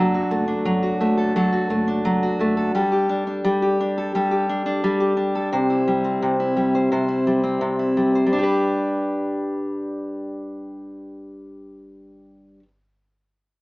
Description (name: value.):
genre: pop.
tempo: 86 BPM.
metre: 4/4.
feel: straight.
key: G major.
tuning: A4 = 440 Hz.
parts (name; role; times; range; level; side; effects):
fingerpicked steel-string acoustic guitar; accompaniment; 0.0-12.7 s; C3 to C5; -19 LUFS; equal; none.
upright bass; bass; 0.0-2.7 s; F#1 to G1; -34 LUFS; equal; none.
room: moderate studio ambience, RT60 0.5 s.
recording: small speaker sound, faint mains hum.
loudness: -19 LUFS.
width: side -23 dB against mid.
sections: 0.0-8.3 A section; 8.3-11.1 B section.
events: none.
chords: 0.0 D/F#; 2.7 Gsus2; 5.5 C; 8.3 G.